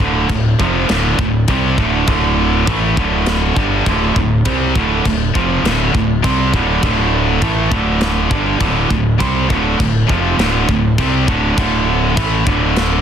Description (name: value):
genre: heavy metal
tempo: 101 BPM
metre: 4/4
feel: straight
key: D minor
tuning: A4 = 440 Hz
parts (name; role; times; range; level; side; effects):
- heavy high-gain guitar; riff; 0.0-13.0 s; D2 to C4; -18 LUFS; right 9 dB; distortion
- scooped high-gain guitar; riff; 0.0-13.0 s; D2 to C4; -18 LUFS; left 9 dB; distortion
- fuzz fingered electric bass; bass; 0.0-13.0 s; D1 to C2; -19 LUFS; left 1 dB; overdrive
- tight metal drum kit; drums; 0.0-12.9 s; china cymbal, kick drum, snare drum; -20 LUFS; left 1 dB; soft clipping on kick
room: small room ambience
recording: dense, heavily limited modern master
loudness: -13 LUFS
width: side -8 dB against mid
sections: 0.0-13.0 A section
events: none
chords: 0.0 Dm